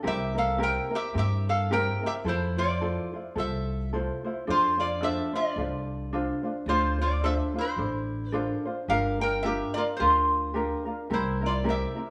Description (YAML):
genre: Hawaiian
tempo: 108 BPM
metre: 4/4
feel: swing 57% on 8ths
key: F major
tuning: A4 = 441 Hz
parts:
  - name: ukulele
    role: accompaniment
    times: 0.0-12.1 s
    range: C4 to C5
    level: -33 LUFS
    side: equal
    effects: none
  - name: upright bass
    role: bass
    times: 0.0-11.8 s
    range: G1 to G2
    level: -33 LUFS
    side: equal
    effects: none
  - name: lap resonator guitar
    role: melody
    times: 0.1-12.1 s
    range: E4 to G5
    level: -30 LUFS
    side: equal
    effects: none
room: wet stone room reverb, RT60 1.0 s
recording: band playing live in one room, small room ambience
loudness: -28 LUFS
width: mono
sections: 0.0-12.1 A section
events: none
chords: 0.0 C7; 2.3 Fmaj7; 4.5 F6; 6.7 Dm7; 8.9 Gm7; 11.1 C7